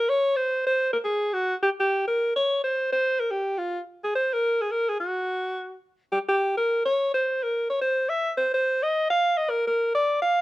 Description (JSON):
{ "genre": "jazz", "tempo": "213 BPM", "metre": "4/4", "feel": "swing 60% on 8ths", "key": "unclear", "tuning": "A4 = 440 Hz", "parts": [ { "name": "bright alto saxophone", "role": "solo", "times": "0.0-10.4 s", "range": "F4 to F5", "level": "-22 LUFS", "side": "equal", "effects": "none" } ], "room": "light reverb", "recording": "worn, warbling old tape, cassette tape, warbly pitch drift", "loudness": "-22 LUFS", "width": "side -17 dB against mid", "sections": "0.0-10.4 A section", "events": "none", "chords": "none", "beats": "0.17 | 0.46 0.74 1.02 1.30 | 1.58 1.87 2.15 2.43 | 2.71 3.00 3.28 3.56 | 3.84 4.12 4.41 4.69 | 4.97 5.25 5.54 5.82 | 6.10 6.38 6.66 6.95 | 7.23 7.51 7.79 8.07 | 8.36 8.64 8.92 9.20 | 9.49 9.77 10.05 10.33" }